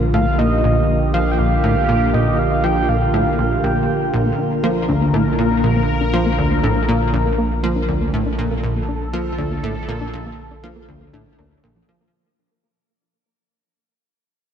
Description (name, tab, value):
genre	ambient, sequencer-driven space music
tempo	120 BPM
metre	4/4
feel	straight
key	Bb major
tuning	A4 = 438 Hz
part	sweeping resonant pad	sustained chords	0.0-12.1 s	D3 to Bb4	-22 LUFS	right 1 dB	chorus, shimmer reverb
part	plucky analog bass	riff	0.0-12.1 s	Bb1 to F3	-20 LUFS	equal	lush chorus, tape echo
part	round analog bass	bass	0.0-12.1 s	Bb1	-23 LUFS	equal	none
part	soft octave-layered synth lead	melody	0.1-4.1 s	Eb5 to G5	-22 LUFS	equal	chorus, shimmer reverb, tape echo
part	soft round pluck	arpeggios	4.3-12.1 s	F3 to Bb4	-26 LUFS	moving between left 5 dB and right 3 dB	chorus, auto-pan, tape echo
room	wet lush hall reverb, RT60 2.8 s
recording	dreamy mix soaked in reverb, cassette tape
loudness	-16 LUFS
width	side -8 dB against mid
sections	0.0-12.1 A section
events	fade-out 6.8-12.1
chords	0.0 Bb